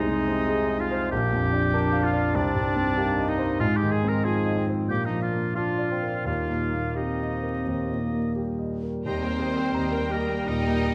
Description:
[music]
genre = classical, romantic movement for piano and orchestra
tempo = 79-97 BPM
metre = 4/4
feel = rubato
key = Eb major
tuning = A4 = 440 Hz
[part]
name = warm grand piano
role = melody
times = 0.0-10.9 s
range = Bb1 to Bb5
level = -28 LUFS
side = equal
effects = none
[part]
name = bright clarinet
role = second line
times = 0.0-10.9 s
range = D4 to Bb4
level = -33 LUFS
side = equal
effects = none
[part]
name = clear oboe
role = second line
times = 0.0-10.9 s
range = Bb4 to Bb5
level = -36 LUFS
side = equal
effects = none
[part]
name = warm bassoon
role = accompaniment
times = 0.0-10.9 s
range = F3 to D4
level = -36 LUFS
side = equal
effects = none
[part]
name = mellow French horn section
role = sustained chords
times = 0.0-10.9 s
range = F3 to G4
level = -36 LUFS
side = equal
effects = none
[part]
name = rich studio violin section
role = melody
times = 9.1-10.9 s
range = Bb4 to Eb5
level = -42 LUFS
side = equal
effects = none
[part]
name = hollow concert flute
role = second line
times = 9.1-10.9 s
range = G5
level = -41 LUFS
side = equal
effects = none
[part]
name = rich studio violin section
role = second line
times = 9.1-10.9 s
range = G5 to Bb5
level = -42 LUFS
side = equal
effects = none
[part]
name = rich studio viola section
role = accompaniment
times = 9.1-10.9 s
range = G4 to G5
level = -39 LUFS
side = equal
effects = none
[part]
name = rich studio cello section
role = bass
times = 9.1-10.9 s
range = Bb3 to Eb4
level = -33 LUFS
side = equal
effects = none
[part]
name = warm studio double bass section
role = bass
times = 9.1-10.9 s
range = Eb2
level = -35 LUFS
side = equal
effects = none
[sound]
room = moderate scoring stage reverb, RT60 1.6 s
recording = close, detailed microphones, vinyl crackle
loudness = -26 LUFS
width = mono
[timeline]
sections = 0.0-9.1 A section; 9.1-10.9 B section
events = none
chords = 0.0 Ab/C; 1.1 Bb; 2.4 Cm; 3.6 Fm7/Ab; 4.9 Bb; 6.3 Eb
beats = 0.48 | 1.11 1.73 2.35 2.98 | 3.61 4.25 4.89 5.57 | 6.27 6.97 7.67 8.36 | 9.07 9.76 10.49

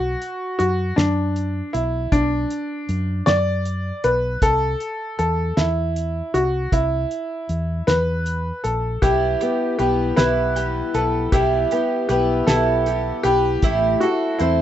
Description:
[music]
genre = indie folk with a building arrangement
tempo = 52 BPM (dotted quarters)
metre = 6/8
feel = straight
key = A dorian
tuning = A4 = 440 Hz
[part]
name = bright upright piano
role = melody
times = 0.0-14.6 s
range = D4 to D5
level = -22 LUFS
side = left 1 dB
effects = slapback echo
[part]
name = hollow-body short-scale fingered electric bass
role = bass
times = 0.0-14.6 s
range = A1 to F#2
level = -24 LUFS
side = equal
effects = none
[part]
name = cloth-damped thuddy drum kit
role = drums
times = 0.2-14.6 s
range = hi-hat, kick drum, snare drum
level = -22 LUFS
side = equal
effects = none
[part]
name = fingerpicked steel-string acoustic guitar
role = accompaniment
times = 9.0-14.6 s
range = A2 to G4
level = -26 LUFS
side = left 2 dB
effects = none
[part]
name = picked twelve-string acoustic guitar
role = accompaniment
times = 9.0-14.6 s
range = A2 to E4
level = -28 LUFS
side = left 7 dB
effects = none
[part]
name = mandolin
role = arpeggios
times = 9.0-14.6 s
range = E4 to C5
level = -23 LUFS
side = right 9 dB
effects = none
[sound]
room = light reverb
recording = rough home demo mix, nothing above 8.0 kHz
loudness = -18 LUFS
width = side -11 dB against mid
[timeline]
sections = 0.0-14.6 A section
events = none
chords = 0.0 Bm; 4.4 Am/C; 9.0 Em/B; 13.6 Am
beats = 0.98 | 2.13 3.28 | 4.43 5.58 | 6.73 7.88 | 9.03 10.18 | 11.33 12.48 | 13.63

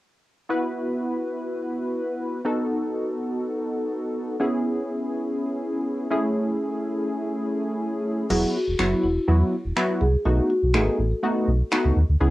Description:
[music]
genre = dance-pop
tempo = 123 BPM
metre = 4/4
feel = straight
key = E major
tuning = A4 = 440 Hz
[part]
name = funky polysynth comp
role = accompaniment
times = 0.5-12.3 s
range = F#3 to B4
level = -24 LUFS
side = equal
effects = chorus, cassette tape
[part]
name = marimba with soft mallets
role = melody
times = 8.3-12.3 s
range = E4 to A4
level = -26 LUFS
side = left 1 dB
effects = tape echo
[part]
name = sub bass with octave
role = bass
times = 8.3-12.3 s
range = E1 to E2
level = -21 LUFS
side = equal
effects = none
[part]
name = pop drum kit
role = drums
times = 8.3-11.8 s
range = crash cymbal, finger snaps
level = -28 LUFS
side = equal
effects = overdrive, cassette tape
[sound]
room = moderate studio reverb, RT60 0.6 s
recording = home recording on cassette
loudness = -22 LUFS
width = side -17 dB against mid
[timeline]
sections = 0.5-8.3 A section; 8.3-12.3 B section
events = none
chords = 0.5 Esus2; 2.5 B7; 4.4 C#m7; 6.1 Amaj7; 8.3 Esus2; 10.3 B7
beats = | 0.50 0.99 1.47 1.96 | 2.45 2.94 3.43 3.91 | 4.40 4.89 5.38 5.87 | 6.35 6.84 7.33 7.82 | 8.30 8.79 9.28 9.77 | 10.26 10.74 11.23 11.72 | 12.21

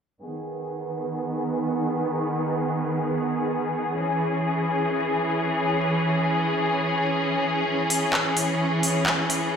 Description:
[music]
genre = EDM, festival progressive house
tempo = free time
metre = none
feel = none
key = G# minor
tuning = A4 = 440 Hz
[part]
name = bright symphonic string section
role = sustained chords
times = 0.2-9.6 s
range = D#3 to G#4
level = -23 LUFS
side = equal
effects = low-pass filter
[part]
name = big-room dance drum kit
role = drums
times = 7.9-9.4 s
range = handclaps, hi-hat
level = -25 LUFS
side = equal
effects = none
[sound]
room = moderate scoring stage reverb, RT60 1.5 s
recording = played on a big sound system in a bare room, stone room reverb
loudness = -22 LUFS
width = side -7 dB against mid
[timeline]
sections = 0.2-9.6 A section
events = filter sweep on string section 0.2-9.6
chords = 0.2 G#m; 3.9 E6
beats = free time

